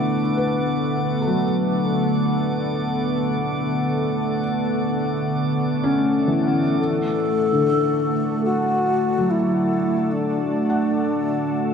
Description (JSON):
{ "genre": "ambient", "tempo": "72 BPM", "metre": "4/4", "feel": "straight", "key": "D major", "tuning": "A4 = 441 Hz", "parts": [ { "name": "warm analog pad", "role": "sustained chords", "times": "0.0-11.7 s", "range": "D3 to F#5", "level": "-22 LUFS", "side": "equal", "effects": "chorus" }, { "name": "felt-muted upright piano", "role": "arpeggios", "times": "0.0-11.7 s", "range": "D3 to F#5", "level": "-25 LUFS", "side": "left 1 dB", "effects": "ping-pong delay" }, { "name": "organ-like drone", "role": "drone", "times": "0.0-11.7 s", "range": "D3 to A3", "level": "-29 LUFS", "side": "right 1 dB", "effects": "ensemble chorus, built-in reverb" }, { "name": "drifting glass-harmonics texture", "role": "texture", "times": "0.0-6.8 s", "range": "D6", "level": "-35 LUFS", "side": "right 5 dB", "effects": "chorus, built-in reverb" }, { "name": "bright reedy wooden-headed alto flute", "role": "melody", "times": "6.8-11.7 s", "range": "D4 to A4", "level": "-22 LUFS", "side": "left 3 dB", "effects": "ping-pong delay" } ], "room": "wet concert hall reverb, RT60 2.1 s", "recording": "worn, warbling old tape, cassette tape, warbly pitch drift", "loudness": "-19 LUFS", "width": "side -6 dB against mid", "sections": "0.0-6.8 A section; 6.8-11.7 B section", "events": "none", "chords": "0.0 Dmaj7; 6.8 D", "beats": "| 0.12 0.95 1.78 2.62 | 3.45 4.29 5.12 5.95 | 6.79 7.62 8.45 9.29 | 10.12 10.95" }